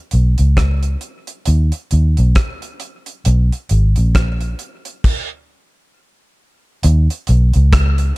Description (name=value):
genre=dub reggae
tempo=67 BPM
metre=4/4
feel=swing 59% on 16ths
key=unclear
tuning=A4 = 438 Hz
part: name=vintage muted fingered electric bass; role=bass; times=0.1-8.1 s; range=Ab1 to D#2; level=-12 LUFS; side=equal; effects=none
part: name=damped 70s drum kit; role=drums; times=0.1-8.2 s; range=crash cymbal, hi-hat, kick drum, rim click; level=-18 LUFS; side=equal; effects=none
room=little or no reverb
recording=dark, warm production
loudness=-13 LUFS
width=side -23 dB against mid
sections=0.0-6.8 A section; 6.8-8.2 B section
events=stop 5.0-6.8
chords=none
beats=0.57 1.47 2.36 | 3.25 4.15 5.04 5.94 | 6.83 7.73